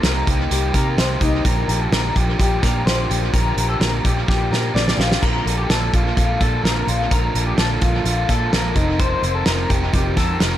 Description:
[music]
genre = jangly indie pop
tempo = 127 BPM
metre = 4/4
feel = straight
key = unclear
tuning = A4 = 440 Hz
[part]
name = crunchy overdriven guitar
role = accompaniment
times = 0.0-10.6 s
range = Bb2 to Bb4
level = -24 LUFS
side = right 3 dB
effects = dub echo
[part]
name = electric guitar through a small old amp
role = arpeggios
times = 0.0-10.6 s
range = Eb4 to D5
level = -24 LUFS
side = left 4 dB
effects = ensemble chorus, dub echo
[part]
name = vintage muted fingered electric bass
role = bass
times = 0.0-10.6 s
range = F1 to C3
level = -22 LUFS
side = equal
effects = none
[part]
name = loose indie drum kit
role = drums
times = 0.0-10.5 s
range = hi-hat, kick drum, snare drum, splash cymbal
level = -20 LUFS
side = equal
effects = dub echo
[sound]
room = small room ambience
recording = echo-heavy mix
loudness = -16 LUFS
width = side -12 dB against mid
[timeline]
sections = 0.0-10.6 A section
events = drum fill 4.3-5.2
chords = 0.0 Cm7; 1.4 Gm7/Bb; 5.2 Bbmaj7; 8.8 F7sus4

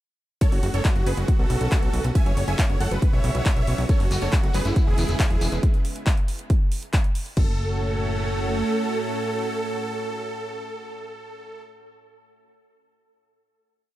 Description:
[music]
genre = uplifting trance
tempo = 138 BPM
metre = 4/4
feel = straight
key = F# minor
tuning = A4 = 444 Hz
[part]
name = supersaw chords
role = melody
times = 0.4-11.6 s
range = E4 to G#5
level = -29 LUFS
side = right 1 dB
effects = sidechain pumping, tape echo
[part]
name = lush unison pad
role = sustained chords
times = 0.6-11.6 s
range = A2 to F#4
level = -31 LUFS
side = right 1 dB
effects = chorus, sidechain pumping
[part]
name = big-room dance drum kit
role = drums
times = 0.4-7.5 s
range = crash cymbal, handclaps, hi-hat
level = -32 LUFS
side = equal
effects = none
[part]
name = electronic kick drum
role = drums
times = 0.4-7.5 s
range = none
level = -20 LUFS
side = equal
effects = none
[part]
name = plucky analog bass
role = bass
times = 0.5-8.6 s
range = E1 to B1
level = -25 LUFS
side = equal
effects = sidechain pumping
[part]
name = shekere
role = percussion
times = 3.9-5.6 s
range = none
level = -36 LUFS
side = left 2 dB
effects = none
[sound]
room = digital ambience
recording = dark, warm production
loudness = -20 LUFS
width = side -15 dB against mid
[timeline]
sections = 0.4-7.4 drop; 7.4-10.8 final chord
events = drop 0.4-7.4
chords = 0.4 F#madd9; 1.3 Bsus2; 2.2 F#madd9; 3.0 Bsus2; 3.9 F#madd9; 4.8 E6; 5.6 N.C.; 7.4 F#m

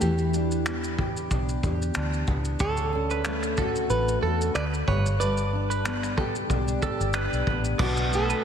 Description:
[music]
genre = acoustic pop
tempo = 93 BPM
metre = 4/4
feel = swing 55% on 16ths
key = unclear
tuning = A4 = 440 Hz
[part]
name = flamenco guitar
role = melody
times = 0.0-8.4 s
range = G4 to D5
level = -30 LUFS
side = right 3 dB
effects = slapback echo, ping-pong delay
[part]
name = fingerpicked steel-string acoustic guitar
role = accompaniment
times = 0.0-8.4 s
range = G2 to G4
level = -29 LUFS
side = left 1 dB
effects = double-tracked left and right, slapback echo
[part]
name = vintage muted fingered electric bass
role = bass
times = 0.0-8.3 s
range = G1 to E2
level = -28 LUFS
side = equal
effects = none
[part]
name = natural country drum kit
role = drums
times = 0.0-8.4 s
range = crash cymbal, finger snaps, kick drum, shaker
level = -30 LUFS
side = equal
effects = none
[part]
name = twelve-string electric guitar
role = arpeggios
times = 2.6-8.4 s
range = A4 to D5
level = -33 LUFS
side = right 6 dB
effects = spring reverb, slapback echo
[part]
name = mellow tonewheel organ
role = sustained chords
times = 7.8-8.4 s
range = B4 to A5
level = -33 LUFS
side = equal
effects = slow rotary speaker
[sound]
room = moderate lush hall reverb, RT60 2.4 s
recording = big arena sound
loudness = -23 LUFS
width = side -8 dB against mid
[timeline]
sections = 0.0-7.8 A section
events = none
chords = 0.0 Em7; 2.6 Dmaj7; 4.9 G; 7.8 Bm7

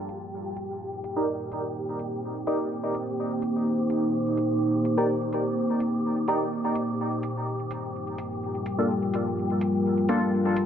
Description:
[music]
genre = dub techno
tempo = 126 BPM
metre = 4/4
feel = straight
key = unclear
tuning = A4 = 440 Hz
[part]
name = deep dark ambient pad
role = sustained chords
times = 0.0-10.7 s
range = G3 to C5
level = -27 LUFS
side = equal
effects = chorus, built-in reverb
[part]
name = wind-like tuned noise texture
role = texture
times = 0.0-10.7 s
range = G4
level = -34 LUFS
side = left 1 dB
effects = built-in reverb
[part]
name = electronic hi-hat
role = drums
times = 0.1-10.7 s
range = none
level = -48 LUFS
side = right 2 dB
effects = dub echo
[part]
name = resonant sweep polysynth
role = stabs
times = 1.2-10.2 s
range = Bb3 to D5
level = -29 LUFS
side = equal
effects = chorus, phaser, dub echo
[sound]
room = moderate plate reverb, RT60 1.5 s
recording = echo-heavy mix, vinyl crackle, low-pass filter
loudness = -25 LUFS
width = side -8 dB against mid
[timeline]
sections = 0.0-10.7 A section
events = filter sweep on ambient pad 0.0-10.7; filter sweep 0.0-10.7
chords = 0.0 Cm7; 7.5 Gm7

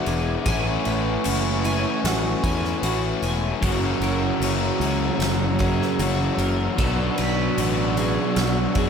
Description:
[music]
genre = rock, shoegaze and dream pop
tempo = 76 BPM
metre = 4/4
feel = straight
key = unclear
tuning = A4 = 440 Hz
[part]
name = dark analog pad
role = sustained chords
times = 0.0-8.9 s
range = B4 to E6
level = -30 LUFS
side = equal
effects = chorus
[part]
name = picked twelve-string acoustic guitar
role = arpeggios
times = 0.0-8.9 s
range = F#4 to G#5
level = -30 LUFS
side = right 3 dB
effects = lush chorus, slapback echo
[part]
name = crunchy overdriven guitar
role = riff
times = 0.0-8.9 s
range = F#2 to F#4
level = -26 LUFS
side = left 12 dB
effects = wide subtle chorus
[part]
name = overdriven semi-hollow guitar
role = riff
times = 0.0-8.9 s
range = B2 to B4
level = -28 LUFS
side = right 11 dB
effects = reverse reverb
[part]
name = fuzz fingered electric bass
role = bass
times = 0.1-8.9 s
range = E1 to F#2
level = -26 LUFS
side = equal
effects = overdrive
[part]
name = big rock drum kit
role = drums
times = 0.1-8.9 s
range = crash cymbal, kick drum, snare drum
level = -28 LUFS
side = equal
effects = none
[part]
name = distorted electric guitar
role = riff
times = 3.6-8.9 s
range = F#2 to B3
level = -29 LUFS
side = equal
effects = distortion
[sound]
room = light reverb, small room ambience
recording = none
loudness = -20 LUFS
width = side -7 dB against mid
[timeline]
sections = 0.0-8.9 A section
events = none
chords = 0.5 Amaj9; 3.6 F#7; 6.8 Bm11

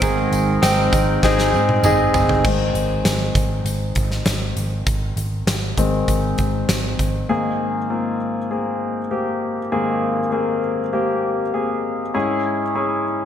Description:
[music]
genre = piano-driven pop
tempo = 99 BPM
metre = 4/4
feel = straight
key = Ab major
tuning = A4 = 435 Hz
[part]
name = warm concert grand piano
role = accompaniment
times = 0.0-13.2 s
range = Ab2 to G5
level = -20 LUFS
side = left 2 dB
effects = lush chorus
[part]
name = fingerpicked plugged-in steel-string acoustic guitar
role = riff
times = 0.0-3.0 s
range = Ab2 to Ab4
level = -25 LUFS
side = right 6 dB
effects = none
[part]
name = vintage muted picked electric bass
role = bass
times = 0.0-7.2 s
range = G1 to Ab2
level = -23 LUFS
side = right 1 dB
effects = none
[part]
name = huge arena drum kit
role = drums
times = 0.0-7.1 s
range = crash cymbal, hi-hat, kick drum, snare drum, toms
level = -22 LUFS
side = right 1 dB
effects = gated reverb
[part]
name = tambourine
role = percussion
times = 0.0-2.3 s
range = none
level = -34 LUFS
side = right 7 dB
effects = none
[sound]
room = moderate lush hall reverb, RT60 2.2 s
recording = bright 1980s-style digital production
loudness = -17 LUFS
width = side -9 dB against mid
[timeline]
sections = 0.0-2.4 A section; 2.4-7.3 B section; 7.3-13.2 C section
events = drum fill 1.2-2.4; grand piano solo 2.4-7.3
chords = 0.0 Ab; 7.3 Abadd9; 12.1 Dbm

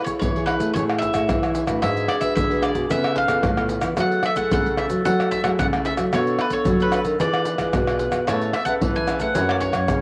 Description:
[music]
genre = samba and choro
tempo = 112 BPM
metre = 4/4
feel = straight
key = A major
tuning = A4 = 439 Hz
[part]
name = bowl-back mandolin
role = melody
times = 0.0-10.0 s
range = B4 to G#5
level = -28 LUFS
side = equal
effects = cassette tape
[part]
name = warm clarinet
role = second line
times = 0.0-10.0 s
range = E4 to C#5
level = -30 LUFS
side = equal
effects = none
[part]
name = nylon-string guitar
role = accompaniment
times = 0.0-10.0 s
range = B2 to D5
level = -30 LUFS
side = equal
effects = none
[part]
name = egg shaker, surdo, pandeiro and tamborim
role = percussion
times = 0.1-10.0 s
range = none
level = -27 LUFS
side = equal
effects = none
[part]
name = nylon-string guitar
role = bass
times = 0.2-10.0 s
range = F#2 to A3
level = -27 LUFS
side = equal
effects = none
[part]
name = cavaquinho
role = accompaniment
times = 8.3-10.0 s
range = E4 to A5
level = -34 LUFS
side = equal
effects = none
[sound]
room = wet spring reverb, RT60 2.5 s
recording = home recording on cassette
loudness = -21 LUFS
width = mono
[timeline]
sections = 0.0-10.0 A section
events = none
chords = 0.0 Amaj7; 1.8 G#m7b5; 2.9 C#7alt; 4.0 F#m9; 6.1 Bm9; 7.2 E7b9; 8.3 Amaj9; 9.4 F#7

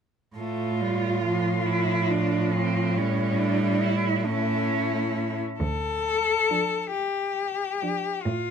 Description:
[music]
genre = classical, lyrical piece for cello ensemble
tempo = 46 BPM (dotted quarters)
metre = 12/8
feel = rubato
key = D minor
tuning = A4 = 444 Hz
[part]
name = clear cello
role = melody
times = 0.4-8.5 s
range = E4 to A4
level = -28 LUFS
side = left 5 dB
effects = none
[part]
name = rich cello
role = second line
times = 0.4-8.1 s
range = C4 to F4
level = -28 LUFS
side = right 6 dB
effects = none
[part]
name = clear cello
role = accompaniment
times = 0.4-8.1 s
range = F3 to A3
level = -29 LUFS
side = left 1 dB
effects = none
[part]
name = rich cello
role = bass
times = 0.4-8.5 s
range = D2 to A2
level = -29 LUFS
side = right 3 dB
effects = none
[sound]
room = light reverb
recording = close, detailed microphones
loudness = -23 LUFS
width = side -7 dB against mid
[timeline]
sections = 0.4-5.6 A section; 5.6-8.5 B section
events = none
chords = 0.4 Dm/A (rootless); 3.0 A7; 5.6 Dm

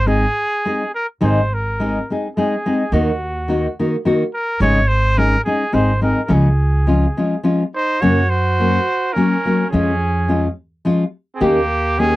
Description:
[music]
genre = mexican folk, mariachi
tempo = 106 BPM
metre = 3/4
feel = straight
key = Db major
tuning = A4 = 439 Hz
[part]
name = warm trumpet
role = melody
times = 0.0-12.2 s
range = Gb4 to Db5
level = -21 LUFS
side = right 1 dB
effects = none
[part]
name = upright bass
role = bass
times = 0.0-12.2 s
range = Ab1 to Gb2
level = -18 LUFS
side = right 1 dB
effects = none
[part]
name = nylon-string guitar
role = accompaniment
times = 0.1-12.2 s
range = Gb2 to Ab4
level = -17 LUFS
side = left 1 dB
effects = none
[part]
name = clear trumpet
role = second line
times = 7.8-12.2 s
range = Bb3 to Gb4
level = -25 LUFS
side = right 5 dB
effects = none
[sound]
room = light reverb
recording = dry, close 1970s-style studio recording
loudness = -15 LUFS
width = side -17 dB against mid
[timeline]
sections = 0.0-12.2 A section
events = none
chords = 0.0 Ab; 2.9 Ebm; 4.6 Absus4; 5.7 Ab; 6.3 Db; 8.0 Gb; 9.7 Db/F; 11.4 Eb7

